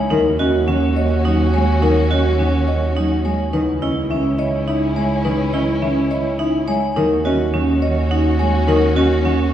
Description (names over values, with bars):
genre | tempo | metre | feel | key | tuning
classical, minimalist pattern music | 105 BPM | 3/4 | straight | unclear | A4 = 440 Hz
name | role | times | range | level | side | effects
marimba with soft mallets | melody | 0.1-9.4 s | A#4 to G#5 | -23 LUFS | left 4 dB | none
dark clarinet | second line | 0.1-9.5 s | E4 to F#4 | -29 LUFS | right 1 dB | none
warm cello | accompaniment | 0.1-9.4 s | D#3 to C#4 | -24 LUFS | equal | none
warm studio violin section | sustained chords | 0.1-9.5 s | C#4 to F#4 | -27 LUFS | left 3 dB | none
vibraphone with hard mallets | arpeggios | 0.1-9.4 s | C#4 to C#5 | -21 LUFS | right 2 dB | none
rich double bass | bass | 0.1-9.5 s | C#2 to D#2 | -20 LUFS | right 1 dB | none
room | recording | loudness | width
wet church reverb, RT60 3.8 s | heard from further back in the room | -15 LUFS | side -10 dB against mid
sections
0.0-9.5 A section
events
none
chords
0.1 D#m7; 3.5 C#m; 7.0 D#m7